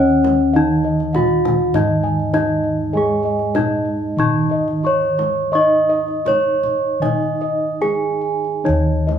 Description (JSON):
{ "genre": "Javanese gamelan", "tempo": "70-100 BPM", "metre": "4/4", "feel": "straight", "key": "unclear", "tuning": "A4 = 440 Hz", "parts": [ { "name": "gamelan-type bronze metallophone", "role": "melody", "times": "0.0-9.2 s", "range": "Db4-25c to Eb5", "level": "-18 LUFS", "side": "equal", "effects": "none" }, { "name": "gamelan-type bronze metallophone", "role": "accompaniment", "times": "0.0-9.2 s", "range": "Eb3 to Eb4", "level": "-24 LUFS", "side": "right 1 dB", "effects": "none" }, { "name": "gamelan-type bossed gongs", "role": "arpeggios", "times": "0.0-9.2 s", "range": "Db5-25c to Db6-25c", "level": "-24 LUFS", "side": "left 3 dB", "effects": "none" }, { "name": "gamelan-type bronze metallophone", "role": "arpeggios", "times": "0.0-9.2 s", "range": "Db5-25c to Eb6", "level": "-27 LUFS", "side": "right 6 dB", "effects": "none" }, { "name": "gamelan-type bossed gongs", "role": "bass", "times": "0.0-9.2 s", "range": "Eb2 to Eb5", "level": "-23 LUFS", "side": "equal", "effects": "none" }, { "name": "kendang", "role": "percussion", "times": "0.1-9.2 s", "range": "none", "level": "-27 LUFS", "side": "left 4 dB", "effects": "none" } ], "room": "wet large studio reverb, RT60 0.9 s", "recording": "band playing live in one room", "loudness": "-15 LUFS", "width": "side -8 dB against mid", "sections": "0.0-8.7 A section", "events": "none", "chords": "none" }